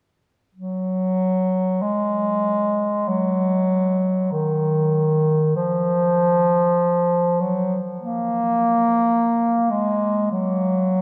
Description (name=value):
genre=classical, free, expressive piece for unaccompanied bass clarinet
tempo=45-53 BPM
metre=4/4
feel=rubato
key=unclear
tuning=A4 = 439 Hz
part: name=warm bass clarinet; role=solo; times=0.6-11.0 s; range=Eb3 to Bb3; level=-20 LUFS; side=equal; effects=none
room=wet cathedral reverb, RT60 5.5 s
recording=none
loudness=-20 LUFS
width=mono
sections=0.5-11.0 A section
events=none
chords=none